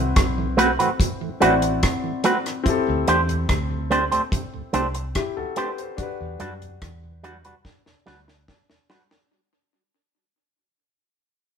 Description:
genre	lovers rock reggae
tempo	72 BPM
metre	4/4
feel	straight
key	unclear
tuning	A4 = 440 Hz
part	mellow tonewheel organ	accompaniment	0.0-9.0 s	D2 to G4	-31 LUFS	right 4 dB	slow rotary speaker, tape echo
part	warm concert grand piano	accompaniment	0.0-9.3 s	C4 to D5	-26 LUFS	left 4 dB	none
part	vintage muted fingered electric bass	bass	0.0-8.5 s	A1 to F#2	-27 LUFS	equal	none
part	deep reggae drum kit	drums	0.2-9.3 s	hi-hat, kick drum, rim click, snare drum	-23 LUFS	equal	tape echo
part	electric guitar with an envelope filter	stabs	0.6-9.0 s	G3 to C5	-21 LUFS	right 2 dB	none
room	moderate stone room reverb, RT60 1.0 s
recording	band playing live in one room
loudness	-20 LUFS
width	side -7 dB against mid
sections	0.0-9.3 A section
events	fade-out 0.0-9.3; drum fill 7.6-9.3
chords	0.0 Am69; 2.7 D7sus4; 6.0 Em9

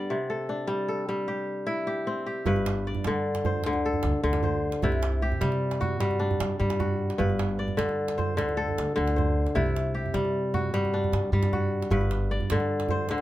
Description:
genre	west african traditional, West African string and xylophone music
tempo	102 BPM (dotted quarters)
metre	12/8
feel	straight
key	G major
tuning	A4 = 440 Hz
part	kora	arpeggios	0.0-13.2 s	G2 to D5	-27 LUFS	left 1 dB	none
part	upright bass	bass	2.5-13.2 s	G1 to C3	-29 LUFS	equal	none
part	djembe	percussion	2.5-13.2 s	none	-33 LUFS	right 5 dB	none
room	light reverb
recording	none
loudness	-24 LUFS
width	side -14 dB against mid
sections	0.0-2.5 A section; 2.5-13.2 B section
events	none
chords	0.1 C; 2.5 G; 4.8 C; 7.2 G; 9.6 C; 11.9 G

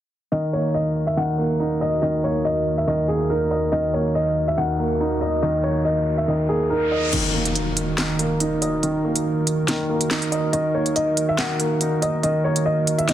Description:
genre	hip hop, drill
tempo	141 BPM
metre	4/4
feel	half-time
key	Eb minor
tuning	A4 = 440 Hz
part	warm upright piano	melody	0.3-7.1, 10.5-13.1 s	Ab4 to Gb5	-23 LUFS	left 1 dB	low-pass filter, ping-pong delay
part	felt-muted upright piano	accompaniment	0.3-13.1 s	Eb3 to Eb5	-22 LUFS	right 1 dB	low-pass filter
part	dark analog pad	sustained chords	0.3-13.1 s	Eb2 to Bb4	-28 LUFS	equal	chorus
part	riser and impact	sound effects	5.0-8.8 s	none	-30 LUFS	left 1 dB	none
part	drill drum kit	drums	7.1-13.1 s	crash cymbal, handclaps, hi-hat, snare drum	-24 LUFS	equal	vintage 12-bit sampler grit
room	light reverb, digital ambience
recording	dense, heavily limited modern master, low-pass filter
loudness	-19 LUFS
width	side -11 dB against mid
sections	0.3-7.1 A section; 7.1-13.1 B section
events	filter sweep 0.3-7.1, 7.1-13.1; riser 5.0-7.1; kick muted 7.1-13.1; impact 7.1-8.8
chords	0.3 Ebm

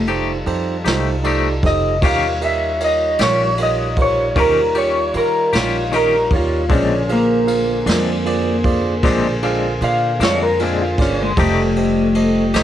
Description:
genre	slow blues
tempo	51 BPM (dotted quarters)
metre	12/8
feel	straight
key	unclear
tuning	A4 = 442 Hz
part	electric guitar through a small old amp	melody	0.0-12.6 s	Ab3 to F5	-18 LUFS	equal	analog chorus
part	tonewheel organ	sustained chords	0.0-12.6 s	D3 to Eb5	-26 LUFS	equal	stopped rotary speaker, cassette tape
part	upright bass	bass	0.0-12.6 s	F1 to Eb3	-23 LUFS	equal	none
part	barky tine electric piano	accompaniment	0.1-12.6 s	Eb4 to F5	-24 LUFS	right 7 dB	cassette tape
part	twangy electric guitar	accompaniment	0.1-12.6 s	Bb2 to G4	-21 LUFS	left 7 dB	tremolo, cassette tape
part	jazz brush drum kit	drums	0.1-12.6 s	kick drum, ride cymbal, snare drum	-22 LUFS	equal	cassette tape
room	light reverb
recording	home recording on cassette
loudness	-14 LUFS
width	side -11 dB against mid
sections	0.0-12.6 A section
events	clean electric guitar solo 0.0-12.6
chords	0.0 F9; 2.0 Eb9; 6.7 Bb9; 11.4 F9

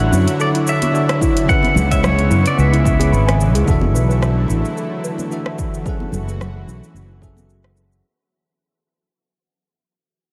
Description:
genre	sunset chillout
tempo	110 BPM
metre	4/4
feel	swing 55% on 16ths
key	F# minor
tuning	A4 = 439 Hz
part	pedal steel guitar	melody	0.0-3.1 s	C#5 to F#5	-25 LUFS	equal	diffuse ambient delay
part	bell-like tine electric piano	accompaniment	0.0-8.1 s	C#3 to F#5	-26 LUFS	equal	analog delay
part	lush unison pad	sustained chords	0.0-8.0 s	C#3 to C#5	-27 LUFS	equal	chorus
part	soft round pluck	arpeggios	0.0-7.8 s	E4 to B5	-28 LUFS	equal	chorus, analog delay
part	fretless electric bass	bass	0.0-8.0 s	E1 to F#2	-18 LUFS	equal	none
part	deep house drum kit	drums	0.0-8.0 s	hi-hat, rim click, shaker	-30 LUFS	equal	overdrive, small room ambience
part	congas	percussion	0.1-7.5 s	none	-31 LUFS	equal	none
part	electronic kick drum	drums	1.2-7.3 s	none	-22 LUFS	equal	overdrive, small room ambience
room	moderate huge ambient reverb, RT60 7.9 s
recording	dreamy mix soaked in reverb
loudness	-17 LUFS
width	mono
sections	0.0-3.7 A section; 3.7-8.0 B section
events	fade-out 3.7-8.0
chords	0.0 Dmaj9; 1.5 C#m7; 3.7 E9sus4; 5.9 F#m9

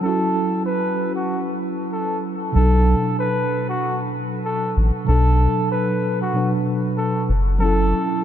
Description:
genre	hip hop, boom-bap hip-hop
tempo	95 BPM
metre	4/4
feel	swing 59% on 16ths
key	B minor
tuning	A4 = 441 Hz
part	trumpet with bucket mute	melody	0.0-8.2 s	F#4 to B4	-24 LUFS	left 1 dB	high-pass filter, low-pass filter, diffuse ambient delay
part	mellow tine electric piano	accompaniment	0.0-8.2 s	B2 to B4	-22 LUFS	right 1 dB	medium stereo tremolo, cassette tape, high-pass filter, low-pass filter
part	soft dub sub bass	bass	2.6-7.9 s	F#1 to B1	-16 LUFS	equal	none
room	moderate huge ambient reverb, RT60 8.4 s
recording	dreamy mix soaked in reverb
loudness	-18 LUFS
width	side -10 dB against mid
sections	0.0-2.6 A section; 2.6-8.2 B section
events	break 0.0-2.6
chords	0.0 F#m7; 2.6 Bm7; 7.3 F#m7

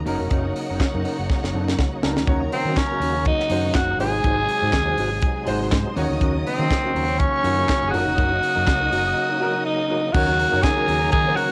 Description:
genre	disco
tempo	122 BPM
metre	4/4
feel	swing 56% on 16ths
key	Eb dorian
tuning	A4 = 439 Hz
part	clear concert grand piano	accompaniment	0.0-11.5 s	Eb3 to Db5	-33 LUFS	equal	cassette tape, plate reverb
part	overdriven tonewheel organ	sustained chords	0.0-11.5 s	C3 to Eb4	-32 LUFS	equal	chorus vibrato, fast rotary speaker, cassette tape, plate reverb
part	overdriven fingered electric bass	bass	0.0-11.3 s	F1 to Eb3	-29 LUFS	equal	none
part	clear symphonic string section	second line	0.1-11.5 s	Eb4 to Eb6	-35 LUFS	equal	cassette tape, plate reverb
part	mellow electric guitar	accompaniment	0.1-11.5 s	Db4 to C5	-32 LUFS	equal	cassette tape, plate reverb
part	tight funk drum kit	drums	0.1-11.5 s	crash cymbal, handclaps, hi-hat, kick drum, snare drum	-27 LUFS	equal	cassette tape
part	raspy tenor saxophone	melody	2.5-11.5 s	C4 to Ab4	-24 LUFS	equal	plate reverb
room	moderate booth ambience, RT60 0.3 s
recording	home recording on cassette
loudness	-21 LUFS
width	mono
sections	0.0-2.3 A section; 2.3-10.1 B section; 10.1-11.5 C section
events	drum fill 1.3-2.3; break 9.2-10.1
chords	0.1 Gb6; 2.3 Ebm7; 4.0 Ab7; 6.0 Ebm7; 7.9 Gb6; 10.1 Ebm7

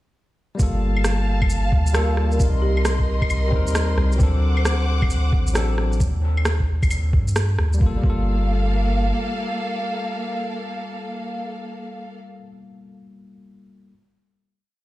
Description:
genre	future garage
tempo	133 BPM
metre	4/4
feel	swing 64% on 16ths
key	G minor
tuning	A4 = 440 Hz
part	barky tine electric piano	accompaniment	0.6-13.9 s	F#3 to Bb4	-29 LUFS	left 3 dB	sidechain pumping, analog delay
part	warm symphonic string section	sustained chords	0.6-12.2 s	Bb3 to D6	-28 LUFS	equal	sidechain pumping
part	soft dub sub bass	bass	0.6-9.1 s	G1 to G2	-20 LUFS	equal	sidechain pumping
part	electronic kick drum	drums	0.6-8.2 s	none	-19 LUFS	equal	small room ambience
part	electronic shaker, claves and rim click	drums	0.6-7.8 s	none	-26 LUFS	right 1 dB	small room ambience
part	folk marimba with soft mallets	melody	1.9-3.0 s	G4 to Bb4	-29 LUFS	right 1 dB	vintage 12-bit sampler grit, tape echo
room	little or no reverb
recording	played on a big sound system in a bare room, stone room reverb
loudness	-18 LUFS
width	side -16 dB against mid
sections	0.6-7.8 groove; 7.8-11.4 final chord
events	none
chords	0.6 Gm9; 2.4 Cm7; 4.2 D7; 6.0 Eb; 7.8 Gm9

